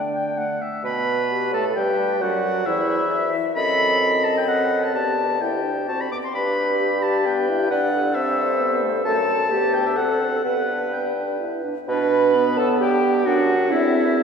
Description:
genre	quick classical-period movement for wind quintet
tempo	131 BPM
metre	3/4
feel	rubato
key	G major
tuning	A4 = 440 Hz
part	hollow concert flute	melody	0.0-14.2 s	G4 to B5	-25 LUFS	left 3 dB	none
part	clear clarinet	accompaniment	0.0-14.2 s	A3 to B4	-26 LUFS	right 4 dB	none
part	warm French horn	accompaniment	0.0-14.2 s	D3 to B4	-26 LUFS	right 2 dB	none
part	warm bassoon	bass	0.0-14.2 s	D2 to D4	-26 LUFS	right 1 dB	none
part	warm oboe	second line	0.1-14.2 s	E4 to D6	-24 LUFS	left 2 dB	none
room	wet church reverb, RT60 2.8 s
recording	recorded in a church or concert hall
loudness	-18 LUFS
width	side -6 dB against mid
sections	0.8-11.9 A section; 11.9-14.2 A section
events	none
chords	0.4 D; 0.8 G/B; 2.2 D9; 3.6 F#dim7; 4.9 G/D; 5.9 D; 6.3 G; 7.7 Am7/G; 9.1 F#m; 9.5 G/D; 10.0 D7; 10.4 G; 11.9 G/B; 13.3 D9

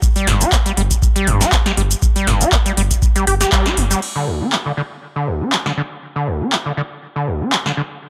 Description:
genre	acid house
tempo	120 BPM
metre	4/4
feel	swing 54% on 16ths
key	unclear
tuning	A4 = 439 Hz
part	electro analog drum machine	drums	0.0-7.8 s	crash cymbal, handclaps, hi-hat, shaker, snare drum	-22 LUFS	equal	none
part	electronic kick drum	drums	0.0-3.6 s	none	-18 LUFS	equal	none
part	overdriven acid bass	riff	0.2-7.8 s	D2 to G4	-22 LUFS	equal	distortion, tube saturation, subtle chorus, analog delay
part	round analog bass	bass	0.3-3.9 s	G1	-20 LUFS	equal	sidechain pumping
room	light reverb, digital ambience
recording	dry, gritty hardware recording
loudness	-17 LUFS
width	mono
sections	0.0-4.0 A section; 4.0-8.1 B section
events	drop 0.0-4.0; band accent 3.5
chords	none

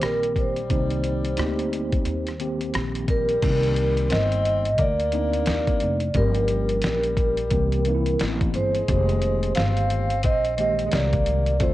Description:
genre	hip hop, jazz-hop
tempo	88 BPM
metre	4/4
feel	swing 58% on 16ths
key	C minor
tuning	A4 = 442 Hz
part	vibraphone with soft mallets	melody	0.0-11.7 s	Bb4 to F5	-25 LUFS	right 1 dB	cassette tape
part	breathy tenor saxophone	second line	0.0-11.7 s	G3 to C4	-34 LUFS	left 8 dB	cassette tape
part	mellow tine electric piano	accompaniment	0.0-11.7 s	D3 to G4	-29 LUFS	equal	medium stereo tremolo, cassette tape
part	upright bass	bass	0.0-11.7 s	F1 to Eb2	-25 LUFS	equal	none
part	boom bap sampler-style drum kit	drums	0.0-11.7 s	crash cymbal, hi-hat, kick drum, rim click, snare drum	-26 LUFS	equal	cassette tape
room	small room ambience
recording	home recording on cassette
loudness	-20 LUFS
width	side -15 dB against mid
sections	0.0-3.4 A section; 3.4-11.7 B section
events	none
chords	0.0 Cm7; 3.4 Cm9; 6.2 Gm7b5; 7.5 C7; 8.9 Fm11

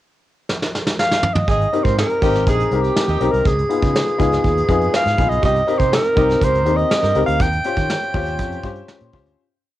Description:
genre	polished 1980s jazz-funk pop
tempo	121 BPM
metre	4/4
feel	straight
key	Ab major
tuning	A4 = 439 Hz
part	vintage brush drum kit	drums	0.5-9.4 s	hi-hat, kick drum, snare drum, toms	-21 LUFS	right 1 dB	none
part	breathy alto saxophone	melody	1.0-9.1 s	G4 to G5	-19 LUFS	right 1 dB	cassette tape
part	warm horn section	second line	1.5-7.2 s	C4 to Bb4	-27 LUFS	right 8 dB	cassette tape
part	fretless electric bass	bass	1.5-9.3 s	Ab1 to Eb3	-22 LUFS	right 1 dB	none
part	clear grand piano	accompaniment	1.7-9.4 s	Cb4 to C5	-22 LUFS	left 6 dB	lush chorus, cassette tape
room	moderate small room reverb, RT60 0.6 s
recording	home recording on cassette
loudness	-15 LUFS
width	side -14 dB against mid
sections	0.0-1.5 pickup bar; 1.5-9.4 verse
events	drum fill 0.5-1.5; fade-out 7.4-9.4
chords	0.0 N.C.; 1.5 Abmaj9; 3.5 Db9; 5.4 Cm7; 7.4 Eb13

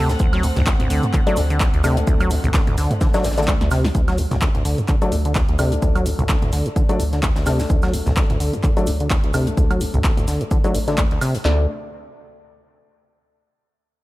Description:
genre	acid house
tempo	128 BPM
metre	4/4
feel	swing 56% on 16ths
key	D mixolydian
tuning	A4 = 441 Hz
part	hollow square pluck	melody	0.0-0.6 s	A4	-30 LUFS	right 2 dB	chorus, tape echo
part	dark chamber string section	sustained chords	0.0-3.9 s	A2 to F#5	-30 LUFS	right 1 dB	sidechain pumping
part	acid bass, saw	riff	0.0-11.7 s	C2 to F#3	-23 LUFS	equal	tube saturation, vintage 12-bit sampler grit, sidechain pumping, dub echo
part	round analog bass	bass	0.0-11.7 s	A1 to D2	-22 LUFS	equal	sidechain pumping
part	punchy analog drum machine	drums	0.1-11.4 s	handclaps, hi-hat, snare drum, toms, woodblock	-26 LUFS	right 1 dB	overdrive, studio reverb
part	tight funk drum kit	drums	0.1-11.4 s	hi-hat, shaker, snare drum	-35 LUFS	left 1 dB	none
part	cabasa	percussion	0.1-11.4 s	none	-39 LUFS	left 2 dB	none
part	punchy analog drum machine	drums	0.2-11.6 s	handclaps, kick drum, snare drum	-19 LUFS	equal	studio reverb
part	dark concert grand piano	stabs	1.3-11.6 s	A3 to D5	-26 LUFS	left 3 dB	low-pass filter, dub echo
room	small room ambience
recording	none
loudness	-16 LUFS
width	side -18 dB against mid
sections	0.0-3.9 A section; 3.9-11.4 B section; 11.4-13.3 C section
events	drop 0.0-3.9; drum fill 3.5-3.9; filter sweep on analog synth bass 3.9-11.4; filter sweep on grand piano 3.9-11.4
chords	0.0 D5

